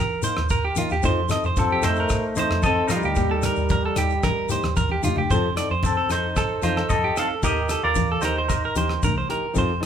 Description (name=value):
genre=highlife guitar band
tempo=113 BPM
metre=4/4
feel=straight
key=F mixolydian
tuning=A4 = 442 Hz
part: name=clean electric guitar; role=arpeggios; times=0.0-9.8 s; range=F4 to Eb5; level=-25 LUFS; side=right 4 dB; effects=none
part: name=flamenco guitar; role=accompaniment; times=0.2-9.9 s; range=F3 to Bb4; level=-30 LUFS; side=left 4 dB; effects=none
part: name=damped 70s drum kit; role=drums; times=0.2-9.9 s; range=hi-hat, kick drum, rim click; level=-27 LUFS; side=equal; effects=none
part: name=congas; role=percussion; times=0.2-9.6 s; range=none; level=-31 LUFS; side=left 2 dB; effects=none
part: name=shekere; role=percussion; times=0.2-9.9 s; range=none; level=-32 LUFS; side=left 4 dB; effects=none
part: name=vintage muted fingered electric bass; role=bass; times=0.4-9.9 s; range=C2 to F3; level=-27 LUFS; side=equal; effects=none
part: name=clean electric guitar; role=melody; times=1.6-9.3 s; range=C4 to F5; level=-25 LUFS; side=left 1 dB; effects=none
part: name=clear trombone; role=second line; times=1.6-4.7 s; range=F3 to C4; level=-29 LUFS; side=left 2 dB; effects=tape echo
room=moderate large studio reverb, RT60 1.2 s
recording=band playing live in one room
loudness=-20 LUFS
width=side -8 dB against mid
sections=0.0-5.3 A section; 5.3-9.9 B section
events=drum fill 4.6-5.3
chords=0.0 Eb; 1.0 F7; 3.2 Eb; 5.3 F7; 7.4 Eb